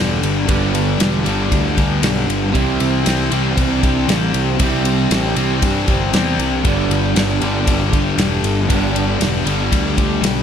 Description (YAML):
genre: rock, shoegaze and dream pop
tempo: 117 BPM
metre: 4/4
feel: straight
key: G major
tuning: A4 = 440 Hz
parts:
  - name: twelve-string electric guitar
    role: arpeggios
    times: 0.0-10.4 s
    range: E3 to G4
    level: -28 LUFS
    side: equal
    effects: none
  - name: biting overdriven guitar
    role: riff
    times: 0.0-10.4 s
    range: G2 to E4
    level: -24 LUFS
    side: right 9 dB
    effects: reverse reverb
  - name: biting overdriven guitar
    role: riff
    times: 0.0-10.4 s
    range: G2 to C4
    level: -22 LUFS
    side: equal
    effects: none
  - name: thick fuzz guitar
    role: riff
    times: 0.0-10.4 s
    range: G2 to C4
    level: -22 LUFS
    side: left 9 dB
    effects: distortion, wide subtle chorus
  - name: fuzz picked electric bass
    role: bass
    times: 0.0-10.4 s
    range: E1 to G2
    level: -20 LUFS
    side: equal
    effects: overdrive
  - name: loose indie drum kit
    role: drums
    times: 0.2-10.4 s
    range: kick drum, ride cymbal, snare drum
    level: -20 LUFS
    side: equal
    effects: none
room: moderate studio reverb, RT60 0.8 s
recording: none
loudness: -14 LUFS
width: side -8 dB against mid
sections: 0.0-10.4 A section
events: none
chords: 0.0 G; 2.5 Cadd9; 6.6 G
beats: | 0.49 1.00 1.51 2.03 | 2.54 3.05 3.56 4.08 | 4.59 5.10 5.62 6.13 | 6.64 7.16 7.67 8.18 | 8.69 9.21 9.72 10.23